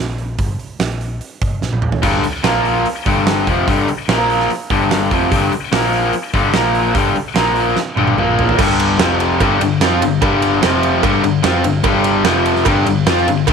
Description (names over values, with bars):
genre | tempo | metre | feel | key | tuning
classic rock | 147 BPM | 4/4 | straight | unclear | A4 = 440 Hz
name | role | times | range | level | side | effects
hollow-body short-scale picked electric bass | bass | 0.0-13.5 s | F1 to F2 | -22 LUFS | equal | none
huge arena drum kit | drums | 0.2-13.5 s | crash cymbal, hi-hat, kick drum, ride cymbal, snare drum, toms | -19 LUFS | right 3 dB | none
biting overdriven guitar | riff | 2.0-13.5 s | F2 to F4 | -16 LUFS | left 12 dB | none
raw garage guitar | riff | 2.0-13.5 s | F2 to F4 | -19 LUFS | right 10 dB | overdrive
overdriven electric guitar | riff | 8.6-13.5 s | F2 to F4 | -21 LUFS | right 1 dB | none
cowbell | percussion | 8.6-13.5 s | none | -25 LUFS | right 12 dB | none
room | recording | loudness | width
moderate spring reverb, RT60 1.9 s, studio reverb | 1960s-style stereo with parts hard left and right | -13 LUFS | side -6 dB against mid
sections
0.0-8.6 A section; 8.6-13.5 B section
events
drum fill 1.6-2.0, 7.8-8.6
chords
0.0 N.C.; 2.0 G5; 2.4 Bb5; 2.9 G5; 4.1 Bb5; 4.5 G5; 5.7 Bb5; 6.1 G5; 6.5 Bb5; 7.0 G5; 7.4 Bb5; 7.8 G5; 8.2 Bb5; 8.6 G5; 9.0 F5; 9.4 G5; 10.6 F5; 11.0 G5; 12.3 F5; 12.7 G5